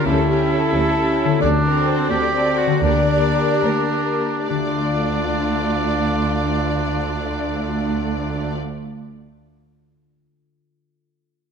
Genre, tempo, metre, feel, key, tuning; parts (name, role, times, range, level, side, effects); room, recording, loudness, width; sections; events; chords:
classical, dramatic, fast romantic movement for symphony orchestra; 67-90 BPM (dotted quarters); 6/8; rubato; D minor; A4 = 442 Hz
warm symphonic violin section; melody; 0.0-8.6 s; A4 to D5; -28 LUFS; left 6 dB
clear oboe; second line; 0.0-8.6 s; D4 to G4; -22 LUFS; right 2 dB
warm symphonic violin section; second line; 0.0-8.6 s; F4 to D5; -25 LUFS; left 2 dB
rich symphonic viola section; accompaniment; 0.0-8.6 s; A3 to G4; -25 LUFS; right 1 dB
concert harp; arpeggios; 0.0-9.0 s; D3 to F5; -25 LUFS; left 7 dB
rich symphonic cello section; bass; 0.1-8.6 s; D2; -28 LUFS; right 2 dB
rich symphonic double bass section; bass; 0.1-8.6 s; D2; -26 LUFS; right 3 dB
wet scoring stage reverb, RT60 1.7 s; -17 LUFS; side -6 dB against mid
0.0-4.5 A section; 4.5-7.8 B section
slowing down 0.8-4.5
0.1 A7/D; 1.4 D7; 2.8 Gm/D; 4.5 Dm